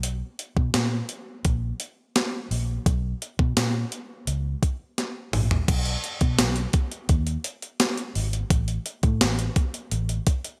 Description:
1980s-style pop; 85 BPM; 4/4; straight; B major; A4 = 440 Hz
vintage muted fingered electric bass; bass; 0.0-10.2 s; G#1 to B2; -29 LUFS; equal
clean 12-bit digital drum machine; drums; 0.0-10.6 s; crash cymbal, hi-hat, kick drum, snare drum, tambourine, toms; -26 LUFS; equal; overdrive, gated reverb
light reverb; bright 1980s-style digital production; -26 LUFS; mono
0.0-5.7 A section; 5.7-10.6 B section
drum fill 5.0-5.7
| 0.04 0.74 1.45 2.15 | 2.86 3.56 4.27 4.98 | 5.68 6.39 7.09 7.80 | 8.51 9.21 9.92

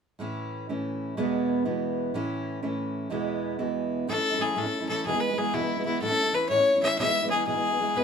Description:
celtic folk; 124 BPM (dotted quarters); 6/8; straight; A major; A4 = 440 Hz
fingerpicked steel-string acoustic guitar; accompaniment; 0.2-8.0 s; E2 to E4; -28 LUFS; right 2 dB
clear fiddle; melody; 4.1-8.0 s; E4 to E5; -24 LUFS; left 3 dB; plate reverb
wet studio reverb, RT60 0.6 s; -25 LUFS; side -6 dB against mid
0.2-4.1 A section; 4.1-8.0 B section
0.2 A; 1.2 E; 2.1 A; 3.1 E; 4.1 A; 5.0 E; 6.0 A; 7.0 E
| 0.19 0.68 | 1.16 1.65 | 2.13 2.62 | 3.10 3.59 | 4.08 4.56 | 5.04 5.53 | 6.01 6.50 | 6.99 7.47 | 7.96

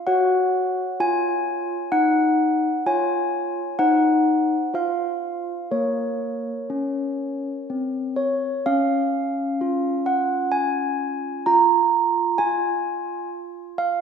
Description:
classical, tune for handbells; 64 BPM; 3/4; straight; Bb minor, Db major from 8.6 s; A4 = 440 Hz
handbells; solo; 0.0-14.0 s; Bb3 to Bb5; -20 LUFS; equal
wet scoring stage reverb, RT60 1.8 s; recorded in a church or concert hall; -20 LUFS; side -6 dB against mid
0.0-8.6 A section; 8.6-14.0 B section
0.1 Gb5; 2.9 Db/F; 3.8 Cdim/Eb; 4.7 F5; 5.7 Bbm; 8.6 Db; 11.5 N.C.
| 0.07 1.00 1.93 | 2.86 3.78 4.72 | 5.69 6.68 7.66 | 8.64 9.59 10.54 | 11.47 12.41 13.34

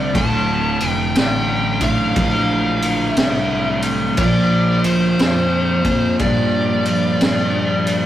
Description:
stoner and doom metal; 60 BPM; 4/4; swing 65% on 8ths; D minor; A4 = 440 Hz
fuzz lead guitar; melody; 0.0-8.1 s; C5 to A5; -23 LUFS; left 2 dB; distortion
fuzz guitar; riff; 0.0-8.1 s; D2 to Bb3; -19 LUFS; right 1 dB; distortion
fuzz fingered electric bass; bass; 0.0-8.1 s; D1 to G2; -24 LUFS; equal; overdrive
raw garage drum kit; drums; 0.1-8.0 s; kick drum, ride cymbal, snare drum; -20 LUFS; equal
light reverb; rough rehearsal-room recording, warm saturation; -15 LUFS; side -12 dB against mid
0.0-8.1 A section
0.0 Dm; 4.2 Bb
| 0.15 1.16 2.17 3.18 | 4.18 5.19 6.20 7.20

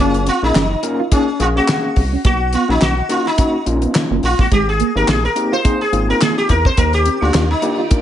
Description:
early-eighties boogie funk; 106 BPM; 4/4; swing 56% on 16ths; A4 = 441 Hz
sitar; melody; 0.0-8.0 s; Db4 to C5; -18 LUFS; left 1 dB
overdriven tine electric piano; accompaniment; 0.0-8.0 s; Bb3 to F5; -20 LUFS; left 2 dB; medium tremolo
mellow electric guitar; riff; 0.0-8.0 s; Ab3 to F#4; -23 LUFS; right 6 dB; analog chorus
rubbery square bass; bass; 0.0-7.5 s; Gb1 to Fb2; -18 LUFS; equal
damped 70s drum kit; drums; 0.1-8.0 s; handclaps, hi-hat, kick drum, snare drum; -17 LUFS; equal; gated reverb
phased string machine; sustained chords; 6.8-8.0 s; Eb3 to D5; -30 LUFS; right 1 dB; ensemble chorus, phaser
light reverb, studio ambience; nothing above 10.9 kHz; -13 LUFS; side -11 dB against mid
0.0-8.0 A section
sitar solo 0.0-8.0
0.0 Gbmaj9; 2.2 Bmaj9; 4.5 Abmaj9; 6.8 Ebmaj9
0.55 1.12 1.68 | 2.25 2.82 3.38 3.95 | 4.51 5.08 5.65 6.21 | 6.78 7.34 7.91

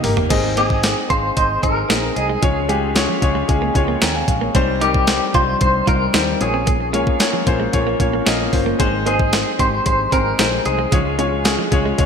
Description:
1980s-style pop; 113 BPM; 4/4; straight; Ab major; A4 = 440 Hz
dark baby grand piano; accompaniment; 0.0-12.1 s; G3 to Bb5; -20 LUFS; left 3 dB
direct-recorded clean electric guitar; riff; 0.0-11.9 s; F3 to F4; -27 LUFS; right 7 dB; lush chorus
vintage muted fingered electric bass; bass; 0.0-12.1 s; G1 to Eb2; -25 LUFS; equal
clean 12-bit digital drum machine; drums; 0.0-12.1 s; crash cymbal, hi-hat, kick drum, snare drum, tambourine, toms; -19 LUFS; equal; overdrive, gated reverb
clean electric guitar; melody; 0.6-12.1 s; G4 to C5; -21 LUFS; equal; tremolo
moderate lush hall reverb, RT60 1.7 s; bright 1980s-style digital production, faint mains hum; -15 LUFS; side -6 dB against mid
0.3-12.1 A section
drum fill 0.0-0.3
0.3 Ab; 2.4 Db; 4.5 Cm; 6.4 Bbm; 8.8 Ab; 10.9 Db
| 0.30 0.83 1.36 1.90 | 2.43 2.96 3.49 4.02 | 4.55 5.08 5.61 6.14 | 6.67 7.21 7.74 8.27 | 8.80 9.33 9.86 10.39 | 10.92 11.45 11.98

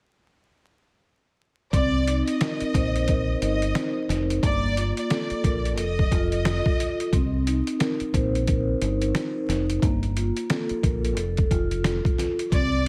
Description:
hip hop, boom-bap hip-hop; 89 BPM; 4/4; swing 61% on 16ths; C dorian; A4 = 440 Hz
warm studio violin section; melody; 1.7-7.1, 12.5-12.9 s; D5 to Eb5; -32 LUFS; equal; tape echo
vibraphone with soft mallets; accompaniment; 1.7-12.9 s; Bb3 to C5; -29 LUFS; equal; cassette tape
deep dub fingered electric bass; bass; 1.7-12.9 s; F1 to C2; -29 LUFS; equal
trip hop sampler-style drum kit; drums; 1.7-12.7 s; hi-hat, kick drum, snare drum; -28 LUFS; equal; overdrive
little or no reverb; vinyl crackle; -24 LUFS; mono
1.7-12.9 A section
1.7 Cm7; 4.4 Gm9; 5.8 F7; 7.1 Cm7; 9.8 Gm9; 11.2 F
| 1.73 2.41 3.08 3.76 | 4.43 5.10 5.78 6.45 | 7.13 7.80 8.47 9.15 | 9.82 10.50 11.17 11.85 | 12.52

